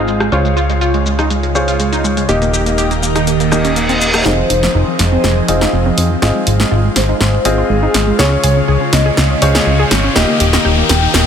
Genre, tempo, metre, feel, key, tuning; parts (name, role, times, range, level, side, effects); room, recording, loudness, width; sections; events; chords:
progressive house; 122 BPM; 4/4; straight; F minor; A4 = 440 Hz
airy breathy pad; sustained chords; 0.0-11.3 s; Db3 to Bb4; -19 LUFS; right 1 dB; chorus, phaser
wide unison pluck; arpeggios; 0.0-11.2 s; F3 to Ab4; -20 LUFS; right 1 dB; ping-pong delay
clear grand piano; stabs; 0.0-11.3 s; Bb3 to Eb5; -19 LUFS; left 2 dB; low-pass filter, ping-pong delay
plucky analog bass; bass; 0.0-11.3 s; Eb1 to F2; -16 LUFS; equal
big-room dance drum kit; drums; 0.1-11.2 s; hi-hat, rim click, shaker, snare drum; -18 LUFS; equal; small room reverb
reverse cymbal and riser; sound effects; 3.4-11.3 s; -22 LUFS; equal
warm velvety synth lead; melody; 4.3-11.3 s; Ab4 to G5; -20 LUFS; equal; chorus, tape echo
light reverb; low-pass filter; -11 LUFS; side -8 dB against mid
0.0-4.3 A section; 4.3-11.3 B section
filter sweep 0.0-4.3; reverse cymbal 3.4-4.3; build-up 4.3-11.3; drum fill 4.3-11.3; riser 4.3-11.3; filter sweep on synth pluck 4.3-11.3; filter sweep on grand piano 4.3-11.3
0.3 Dbmaj7; 2.3 Eb; 4.3 Fm7; 6.2 Ab6; 8.2 Dbmaj7; 10.2 Eb